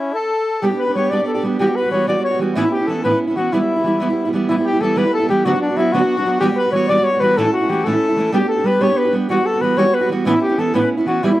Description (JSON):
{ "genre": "celtic folk, Celtic jig", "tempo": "124 BPM (dotted quarters)", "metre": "6/8", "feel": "straight", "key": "E dorian", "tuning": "A4 = 440 Hz", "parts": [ { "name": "trumpet with bucket mute", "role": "melody", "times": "0.0-11.4 s", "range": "C#4 to D5", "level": "-18 LUFS", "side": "left 1 dB", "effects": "slapback echo" }, { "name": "accordion", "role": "second line", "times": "0.0-11.4 s", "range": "D4 to D5", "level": "-26 LUFS", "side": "left 4 dB", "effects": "slapback echo" }, { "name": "fingerpicked steel-string acoustic guitar", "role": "accompaniment", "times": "0.6-11.4 s", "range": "D2 to G4", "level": "-18 LUFS", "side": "right 2 dB", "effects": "none" } ], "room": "light reverb", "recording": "recorded outdoors, with no room sound", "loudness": "-15 LUFS", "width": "side -15 dB against mid", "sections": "0.0-4.5 A section; 4.5-11.4 A section", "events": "none", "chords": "0.0 N.C.; 0.6 G; 1.6 Emadd9; 2.6 Aadd9; 3.5 Em; 5.5 Bm/D; 6.4 Emadd9; 7.4 A; 8.3 G; 9.3 Emadd9; 10.3 Aadd9" }